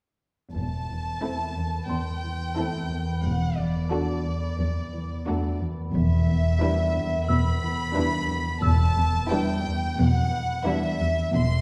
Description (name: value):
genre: cinematic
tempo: 89 BPM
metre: 4/4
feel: straight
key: E minor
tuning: A4 = 436 Hz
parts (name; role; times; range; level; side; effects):
- warm chamber violin section; melody; 0.5-11.6 s; D5 to C6; -33 LUFS; equal; none
- dark chamber cello section; riff; 0.5-11.5 s; E2 to E3; -32 LUFS; equal; none
- dark chamber double bass section; bass; 0.5-11.6 s; E1; -29 LUFS; equal; none
- dark studio cello section; bass; 0.5-11.6 s; E2 to B2; -31 LUFS; equal; none
- metallic inharmonic drone; drone; 1.0-11.6 s; E2; -32 LUFS; equal; chorus, built-in reverb
- warm studio violin section; second line; 1.2-11.2 s; E4 to B4; -36 LUFS; equal; none
- warm studio viola section; accompaniment; 1.2-11.2 s; G3 to D4; -34 LUFS; equal; none
- music box; texture; 1.9-10.6 s; C6 to E6; -38 LUFS; equal; none
room: wet scoring stage reverb, RT60 1.6 s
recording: heard from further back in the room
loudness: -25 LUFS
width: mono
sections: 0.5-11.6 A section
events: none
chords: 0.5 Am/E; 3.2 D/E; 5.9 Em7